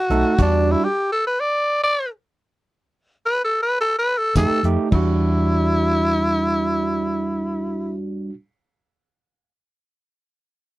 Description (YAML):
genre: straight-eighth soul blues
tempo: 106 BPM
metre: 4/4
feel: straight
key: E minor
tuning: A4 = 440 Hz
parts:
  - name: raspy tenor saxophone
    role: melody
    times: 0.0-8.0 s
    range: D4 to D5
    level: -20 LUFS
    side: equal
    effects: none
  - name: overdriven tine electric piano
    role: accompaniment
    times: 0.1-0.8, 4.4-8.3 s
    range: G3 to A4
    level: -22 LUFS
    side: right 3 dB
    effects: wide subtle chorus
  - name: hollow-body short-scale fingered electric bass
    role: bass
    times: 0.1-0.7, 4.4-8.3 s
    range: B1 to F2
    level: -22 LUFS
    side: equal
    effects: none
  - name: damped 70s drum kit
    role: drums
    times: 0.1-0.5, 4.4-5.1 s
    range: crash cymbal, hi-hat, kick drum, snare drum, tambourine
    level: -20 LUFS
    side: equal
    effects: none
room: little or no reverb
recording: dry, close 1970s-style studio recording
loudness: -18 LUFS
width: side -18 dB against mid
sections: 0.0-4.9 A section; 4.9-7.2 B section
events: stop 0.4-4.4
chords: 0.4 Em7; 4.4 F7; 4.9 Em7